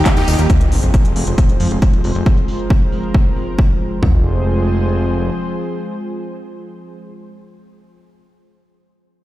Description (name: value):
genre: uplifting trance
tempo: 136 BPM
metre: 4/4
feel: straight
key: F minor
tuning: A4 = 440 Hz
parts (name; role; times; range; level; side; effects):
- supersaw stab; melody; 0.0-0.5 s; Eb4 to G4; -27 LUFS; left 1 dB; none
- warm concert grand piano; second line; 0.0-0.5 s; G4; -30 LUFS; right 1 dB; none
- lush unison pad; sustained chords; 0.0-7.0 s; Eb3 to C5; -23 LUFS; equal; chorus, sidechain pumping
- fat analog bass; bass; 0.0-5.3 s; Eb1 to F2; -17 LUFS; equal; sidechain pumping
- techno drum kit; drums; 0.1-4.1 s; kick drum, toms; -14 LUFS; equal; overdrive
- techno drum kit; drums; 0.1-4.0 s; handclaps, hi-hat, tambourine; -26 LUFS; equal; overdrive, low-pass filter on hats, low-pass filter on perc, low-pass filter on snare
- sub drop; sound effects; 0.5-2.3 s; none; -21 LUFS; equal; none
room: little or no reverb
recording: played on a big sound system in a bare room, stone room reverb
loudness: -13 LUFS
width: side -15 dB against mid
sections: 0.5-4.0 A section; 4.0-7.6 B section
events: band accent 0.1; impact 0.5-2.3; filter sweep on drum 0.5-4.0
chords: 0.5 Fm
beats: 0.06 | 0.50 0.94 1.38 1.82 | 2.26 2.70 3.15 3.59 | 4.03 4.47 4.91 5.35 | 5.79 6.23 6.67